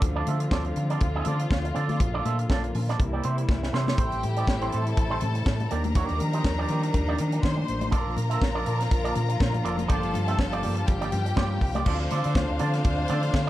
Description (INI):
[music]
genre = disco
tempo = 122 BPM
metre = 4/4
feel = swing 56% on 16ths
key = D minor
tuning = A4 = 440 Hz
[part]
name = electric guitar with an envelope filter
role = accompaniment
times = 0.0-13.5 s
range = Bb3 to E5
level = -32 LUFS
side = right 5 dB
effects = none
[part]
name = dark studio string section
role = sustained chords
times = 0.0-13.5 s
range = C3 to F4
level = -32 LUFS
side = left 1 dB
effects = none
[part]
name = overdriven fingered electric bass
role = bass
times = 0.0-13.5 s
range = F1 to Eb3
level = -28 LUFS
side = equal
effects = none
[part]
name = tight funk drum kit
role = drums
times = 0.0-13.5 s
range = crash cymbal, hi-hat, kick drum, snare drum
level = -27 LUFS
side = equal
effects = none
[part]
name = congas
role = percussion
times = 0.0-13.5 s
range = none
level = -37 LUFS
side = left 6 dB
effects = none
[part]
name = clear studio string section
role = second line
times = 4.0-13.5 s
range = D4 to C6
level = -32 LUFS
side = left 2 dB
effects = none
[sound]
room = studio reverb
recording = dark, warm production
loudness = -23 LUFS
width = side -15 dB against mid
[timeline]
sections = 0.0-4.0 A section; 4.0-11.9 B section; 11.9-13.5 C section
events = drum fill 3.5-4.0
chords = 0.0 Dm7; 2.0 Bbmaj7; 3.0 C7; 4.0 Am7; 5.7 Ebmaj9; 7.9 Bbmaj7; 9.9 Gm7; 11.9 Dm7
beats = | 0.02 0.52 1.01 1.51 | 2.00 2.50 2.99 3.48 | 3.98 4.47 4.97 5.46 | 5.95 6.45 6.94 7.43 | 7.93 8.42 8.91 9.40 | 9.90 10.39 10.88 11.37 | 11.87 12.36 12.85 13.34